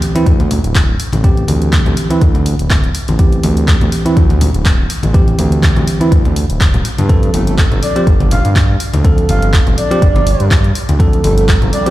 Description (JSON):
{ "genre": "deep house", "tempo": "123 BPM", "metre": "4/4", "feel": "swing 55% on 16ths", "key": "D minor", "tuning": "A4 = 440 Hz", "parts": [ { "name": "bell-like tine electric piano", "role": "stabs", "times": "0.0-11.9 s", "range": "E3 to A4", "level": "-18 LUFS", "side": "right 1 dB", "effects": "sidechain pumping, tape echo" }, { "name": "deep house drum kit", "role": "drums", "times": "0.0-11.9 s", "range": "handclaps, hi-hat", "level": "-22 LUFS", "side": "equal", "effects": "none" }, { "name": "smooth synth bass", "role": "bass", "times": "0.3-11.7 s", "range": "D1 to G2", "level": "-15 LUFS", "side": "equal", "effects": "sidechain pumping" }, { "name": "electronic kick drum", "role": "drums", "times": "0.3-11.6 s", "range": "none", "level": "-11 LUFS", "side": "equal", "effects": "none" }, { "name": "congas", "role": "percussion", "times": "0.4-11.7 s", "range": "none", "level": "-21 LUFS", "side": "left 2 dB", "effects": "none" }, { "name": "breathy flute-like synth lead", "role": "melody", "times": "7.3-11.9 s", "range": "A4 to F5", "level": "-20 LUFS", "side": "right 1 dB", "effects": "analog chorus, cassette tape, dub echo" }, { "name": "riser", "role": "sound effects", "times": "11.4-11.9 s", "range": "none", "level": "-27 LUFS", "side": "left 2 dB", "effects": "none" } ], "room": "light reverb", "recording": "played on a big sound system in a bare room, large studio reverb", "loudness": "-10 LUFS", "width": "side -15 dB against mid", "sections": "0.0-11.9 A section", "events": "riser 11.4-11.9", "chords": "0.0 D9sus4; 6.8 G9sus4" }